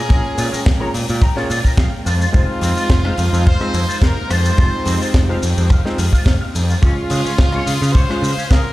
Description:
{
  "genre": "nu-disco, nu disco",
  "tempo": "107 BPM",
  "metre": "4/4",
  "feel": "swing 54% on 16ths",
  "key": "F minor",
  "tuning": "A4 = 440 Hz",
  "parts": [
    { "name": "bright trumpet section", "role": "melody", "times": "0.0-8.7 s", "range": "F4 to C5", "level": "-24 LUFS", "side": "equal", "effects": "tape echo" },
    { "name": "rich studio string section", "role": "sustained chords", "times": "0.0-8.7 s", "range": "Ab3 to G5", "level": "-29 LUFS", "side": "right 1 dB", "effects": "sidechain pumping" },
    { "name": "electric guitar with an envelope filter", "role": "riff", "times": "0.0-8.6 s", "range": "Ab3 to Bb5", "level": "-28 LUFS", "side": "left 1 dB", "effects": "ensemble chorus, slapback echo" },
    { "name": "warm electric grand piano", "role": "accompaniment", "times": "0.1-8.2 s", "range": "Ab3 to Db5", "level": "-25 LUFS", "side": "equal", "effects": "sidechain pumping, slapback echo" },
    { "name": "overdriven picked electric bass", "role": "bass", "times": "0.1-8.6 s", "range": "F1 to Db3", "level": "-18 LUFS", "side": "equal", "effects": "none" },
    { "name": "kick drum", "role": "drums", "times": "0.1-8.6 s", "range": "none", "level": "-14 LUFS", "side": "equal", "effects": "none" },
    { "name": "tight funk drum kit", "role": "drums", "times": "0.1-8.6 s", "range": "hi-hat, rim click, shaker, snare drum", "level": "-25 LUFS", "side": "left 1 dB", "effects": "none" }
  ],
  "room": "light reverb, small room reverb",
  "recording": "played on a big sound system in a bare room, stone room reverb",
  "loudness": "-14 LUFS",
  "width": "side -17 dB against mid",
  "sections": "0.0-8.7 A section",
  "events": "none",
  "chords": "0.0 Bbm7; 2.1 Fm7; 6.8 Db"
}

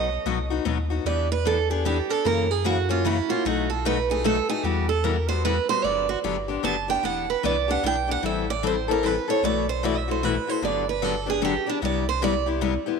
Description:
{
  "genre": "acoustic string swing (jazz manouche)",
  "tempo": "150 BPM",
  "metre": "3/4",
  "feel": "swing 62% on 8ths",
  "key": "E minor",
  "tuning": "A4 = 437 Hz",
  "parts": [
    { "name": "picked steel-string acoustic guitar", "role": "melody", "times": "0.0-12.5 s", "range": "D4 to A5", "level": "-25 LUFS", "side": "right 9 dB", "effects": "tape echo" },
    { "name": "picked steel-string acoustic guitar", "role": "accompaniment", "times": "0.0-13.0 s", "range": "B2 to A4", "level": "-26 LUFS", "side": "left 11 dB", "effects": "none" },
    { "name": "pure sine sub bass", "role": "bass", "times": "0.0-12.8 s", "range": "E1 to F#2", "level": "-29 LUFS", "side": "equal", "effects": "none" }
  ],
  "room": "moderate echo chamber reverb, RT60 2.2 s",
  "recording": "1960s-style stereo with parts hard left and right",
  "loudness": "-22 LUFS",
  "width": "side -5 dB against mid",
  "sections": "0.0-5.8 A section; 5.8-13.0 A section",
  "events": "steel-string acoustic guitar solo 0.0-13.0",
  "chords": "0.0 B; 1.1 Em7; 2.3 F#7; 3.5 B7; 4.6 Emadd9; 5.8 Gmaj7; 7.0 Em7; 8.2 Am7; 9.4 B7sus4; 10.6 Gmaj7; 11.8 Cmaj7"
}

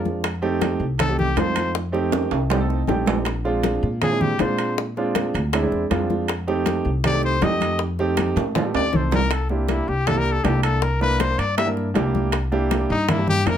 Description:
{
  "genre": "Afro-Cuban jazz",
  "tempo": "159 BPM",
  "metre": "4/4",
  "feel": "straight",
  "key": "F major",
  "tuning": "A4 = 440 Hz",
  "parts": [
    { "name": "bright trumpet", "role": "melody", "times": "0.0-4.8, 7.1-13.6 s", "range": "C4 to E5", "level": "-24 LUFS", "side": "left 3 dB", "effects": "none" },
    { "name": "warm upright piano", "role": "accompaniment", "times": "0.0-13.6 s", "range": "Ab3 to G5", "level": "-24 LUFS", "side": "right 3 dB", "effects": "none" },
    { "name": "upright bass", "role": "bass", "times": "0.0-13.6 s", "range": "Bb1 to Bb2", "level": "-24 LUFS", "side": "left 1 dB", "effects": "none" },
    { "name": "bongos", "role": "percussion", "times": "0.1-13.6 s", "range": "none", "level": "-30 LUFS", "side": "left 8 dB", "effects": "none" },
    { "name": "congas", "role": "percussion", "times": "0.1-13.6 s", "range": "none", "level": "-27 LUFS", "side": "left 2 dB", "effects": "none" },
    { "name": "timbales", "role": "percussion", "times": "0.2-13.6 s", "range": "none", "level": "-26 LUFS", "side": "right 5 dB", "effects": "none" }
  ],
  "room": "moderate studio reverb, RT60 0.5 s",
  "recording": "none",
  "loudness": "-19 LUFS",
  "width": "side -9 dB against mid",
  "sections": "0.0-13.6 A section",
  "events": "trumpet solo 0.0-13.6; drum fill 2.1-3.3, 8.4-9.3; upright piano fill 2.5-3.3",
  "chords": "0.2 F9; 3.3 Bb9; 6.3 F9; 9.3 C9"
}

